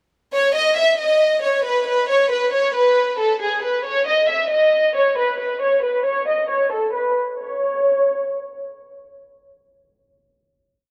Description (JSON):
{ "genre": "hip hop, trap", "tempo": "136 BPM", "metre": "4/4", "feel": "half-time", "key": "C# minor", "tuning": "A4 = 440 Hz", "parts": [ { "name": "warm studio violin section", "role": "solo", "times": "0.3-8.7 s", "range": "G#4 to E5", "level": "-19 LUFS", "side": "equal", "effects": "delay" } ], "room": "light reverb, studio reverb", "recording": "low-pass filter", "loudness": "-19 LUFS", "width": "mono", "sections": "0.3-7.4 breakdown; 7.4-10.9 final note", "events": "filter sweep 0.3-7.4", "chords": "none", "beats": "| 0.33 0.77 1.21 1.65 | 2.09 2.53 2.98 3.42 | 3.86 4.30 4.74 5.18 | 5.62 6.06 6.50 6.95 | 7.39 7.83 8.27" }